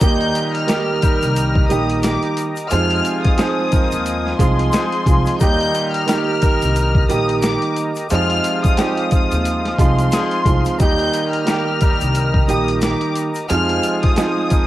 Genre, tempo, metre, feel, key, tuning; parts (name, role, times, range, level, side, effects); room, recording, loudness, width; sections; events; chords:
hip hop, boom-bap hip-hop; 89 BPM; 4/4; swing 59% on 16ths; Eb major; A4 = 440 Hz
rich studio violin section; melody; 0.0-14.7 s; C6 to G6; -23 LUFS; left 2 dB; high-pass filter, low-pass filter, cassette tape, tape echo
dark baby grand piano; accompaniment; 0.0-14.7 s; Eb3 to G4; -20 LUFS; right 4 dB; cassette tape, high-pass filter, low-pass filter
tonewheel organ; sustained chords; 0.0-14.7 s; F4 to Bb5; -26 LUFS; left 1 dB; chorus vibrato, wide subtle chorus, high-pass filter, low-pass filter, cassette tape
warm horn section; stabs; 0.0-14.7 s; Bb2 to Bb4; -26 LUFS; left 2 dB; high-pass filter, low-pass filter, cassette tape
upright bass; bass; 0.0-13.8 s; Bb1 to F2; -20 LUFS; equal
boom bap sampler-style drum kit; drums; 0.0-14.7 s; hi-hat, kick drum, snare drum; -18 LUFS; equal
tube shaker; percussion; 0.0-14.7 s; -37 LUFS; left 8 dB
little or no reverb; home recording on cassette, vinyl crackle; -15 LUFS; side -14 dB against mid
0.0-14.7 A section
0.0 Eb; 2.7 Fm7; 5.4 Eb; 8.1 Fm7; 10.8 Eb; 13.5 Fm7